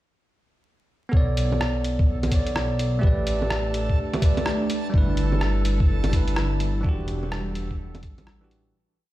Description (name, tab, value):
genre	future garage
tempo	126 BPM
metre	4/4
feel	swing 63% on 16ths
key	B minor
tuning	A4 = 439 Hz
part	bell-like tine electric piano	accompaniment	1.1-8.8 s	E3 to D5	-28 LUFS	right 1 dB	vintage 12-bit sampler grit, sidechain pumping, tape echo
part	dark detuned saw bass	bass	1.1-8.7 s	E1 to B1	-25 LUFS	equal	sidechain pumping
part	electronic kick drum	drums	1.1-8.2 s	none	-20 LUFS	equal	none
part	backwards swelling texture	texture	2.1-8.8 s	A4	-37 LUFS	right 3 dB	built-in reverb
part	lo-fi sampler-style drum kit	drums	1.4-8.6 s	bongos, hi-hat, rim click	-30 LUFS	equal	none
part	ethereal airy pad	sustained chords	3.8-8.7 s	E3 to F#5	-34 LUFS	right 1 dB	ensemble chorus, built-in reverb, phaser, sidechain pumping
room	digital ambience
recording	played on a big sound system in a bare room, stone room reverb, vinyl crackle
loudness	-21 LUFS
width	side -15 dB against mid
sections	1.1-8.8 groove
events	fade-out 6.2-8.8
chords	1.1 Bm9; 3.0 A9sus4; 4.9 G6; 6.8 Em9